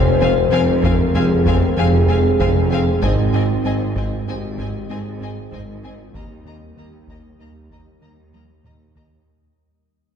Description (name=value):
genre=cinematic, hybrid orchestral and electronic film score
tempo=96 BPM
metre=5/4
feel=straight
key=unclear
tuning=A4 = 438 Hz
part: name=glassy FM pad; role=sustained chords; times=0.0-9.3 s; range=G3 to Eb5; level=-29 LUFS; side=left 2 dB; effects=ensemble chorus, built-in reverb
part: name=mellow French horn section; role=sustained chords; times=0.0-8.6 s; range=Eb4 to C5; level=-22 LUFS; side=left 2 dB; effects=none
part: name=warm trombone section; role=sustained chords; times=0.0-8.9 s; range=C3 to C4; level=-28 LUFS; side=left 4 dB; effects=none
part: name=thumb-piano-like synth pluck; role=arpeggios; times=0.0-9.1 s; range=Eb3 to Eb4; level=-31 LUFS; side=left 4 dB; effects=none
part: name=rubbery square bass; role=riff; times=0.0-9.1 s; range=Eb2 to Ab3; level=-26 LUFS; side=right 1 dB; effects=none
part: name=rich symphonic double bass section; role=bass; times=0.0-9.2 s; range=F1 to Eb2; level=-24 LUFS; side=right 2 dB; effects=none
part: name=warm symphonic cello section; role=bass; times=0.0-9.2 s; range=Eb2 to Ab2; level=-23 LUFS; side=equal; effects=none
part: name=warm tuba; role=bass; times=0.0-9.2 s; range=F1 to Eb2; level=-24 LUFS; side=right 2 dB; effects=none
part: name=warm symphonic violin section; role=melody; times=0.2-9.0 s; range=Ab5 to Bb5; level=-31 LUFS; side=left 4 dB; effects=none
part: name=warm symphonic violin section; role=second line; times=0.2-9.0 s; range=Eb5 to F5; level=-30 LUFS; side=left 4 dB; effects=none
part: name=warm symphonic viola section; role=accompaniment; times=0.2-9.0 s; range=Bb3 to C4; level=-30 LUFS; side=right 1 dB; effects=none
part: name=taiko ensemble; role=drums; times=0.8-9.2 s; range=none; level=-26 LUFS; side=left 1 dB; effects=none
room=wet concert hall reverb, RT60 2.1 s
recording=heard from further back in the room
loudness=-15 LUFS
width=side -8 dB against mid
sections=0.0-9.3 A section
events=fade-out 0.0-9.3; drum fill 8.3-9.3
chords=0.0 Fm; 3.0 Ab; 6.1 Eb